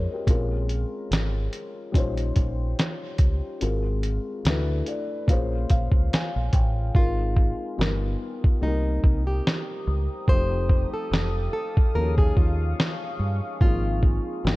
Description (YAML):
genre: lo-fi hip hop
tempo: 72 BPM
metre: 4/4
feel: swing 56% on 16ths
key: Bb dorian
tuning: A4 = 440 Hz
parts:
  - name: dark upright piano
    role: accompaniment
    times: 0.0-14.6 s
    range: F3 to Ab5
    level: -31 LUFS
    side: left 3 dB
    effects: cassette tape
  - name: deep dub fingered electric bass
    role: bass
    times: 0.0-14.6 s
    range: F1 to G2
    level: -26 LUFS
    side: equal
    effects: none
  - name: lo-fi sampler-style drum kit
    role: drums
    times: 0.3-14.6 s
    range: hi-hat, kick drum, snare drum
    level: -22 LUFS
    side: equal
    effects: none
  - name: deep dark ambient pad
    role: sustained chords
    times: 7.5-14.6 s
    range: G4 to D#6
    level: -37 LUFS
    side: equal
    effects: chorus, built-in reverb
  - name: flamenco guitar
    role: melody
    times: 7.0-14.6 s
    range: Eb4 to C5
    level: -31 LUFS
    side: equal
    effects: tape echo
room: digital ambience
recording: cassette tape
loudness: -22 LUFS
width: side -20 dB against mid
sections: 0.0-6.9 A section; 6.9-14.6 B section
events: upright piano fill 4.4-6.9; hi-hats muted 6.9-14.6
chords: 0.3 Bbm9; 1.9 Eb13/Bb; 3.6 Ab13; 4.4 D69; 5.3 Bbm9; 6.9 Ab69; 7.8 G7alt; 8.6 Cm7; 10.3 F9; 11.9 Eb9sus4; 13.6 Ab69